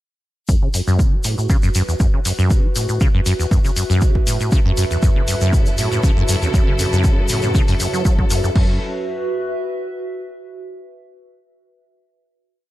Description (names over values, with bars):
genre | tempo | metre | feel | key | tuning
acid house | 119 BPM | 4/4 | swing 53% on 16ths | F# minor | A4 = 440 Hz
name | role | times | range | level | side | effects
acid bass, saw | riff | 0.5-8.8 s | E2 to F#3 | -19 LUFS | equal | wide subtle chorus, sidechain pumping
electronic kick drum | drums | 0.5-8.7 s | none | -16 LUFS | equal | none
tube shaker | percussion | 0.5-8.5 s | none | -28 LUFS | left 2 dB | none
warbly tape-like pad | texture | 0.8-10.5 s | F#4 to E5 | -26 LUFS | right 1 dB | chorus, built-in reverb, phaser, sidechain pumping
punchy analog drum machine | drums | 0.7-8.7 s | crash cymbal, hi-hat | -28 LUFS | left 1 dB | none
clear symphonic string section | sustained chords | 4.5-8.8 s | F#2 to A4 | -26 LUFS | equal | sidechain pumping
room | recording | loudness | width
little or no reverb | none | -15 LUFS | side -15 dB against mid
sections
0.5-8.6 groove; 8.6-10.6 final chord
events
none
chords
0.5 F#m7; 8.6 F#7(no3)